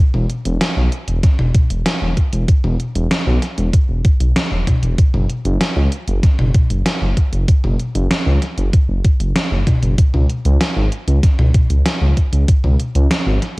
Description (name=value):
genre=synthwave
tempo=96 BPM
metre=4/4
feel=straight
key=unclear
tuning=A4 = 440 Hz
part: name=dark detuned saw bass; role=bass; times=0.1-13.4 s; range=E1 to C#2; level=-16 LUFS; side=equal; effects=tube saturation
part: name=gated 80s digital drum machine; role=drums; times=0.1-13.5 s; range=hi-hat, snare drum, toms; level=-20 LUFS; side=equal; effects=gated reverb, gated reverb snare, overdrive, cassette tape
part: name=electronic kick drum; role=drums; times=1.2-12.6 s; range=none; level=-13 LUFS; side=equal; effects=overdrive, cassette tape
room=little or no reverb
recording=home recording on cassette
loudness=-14 LUFS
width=side -23 dB against mid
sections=0.0-13.6 A section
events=none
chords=none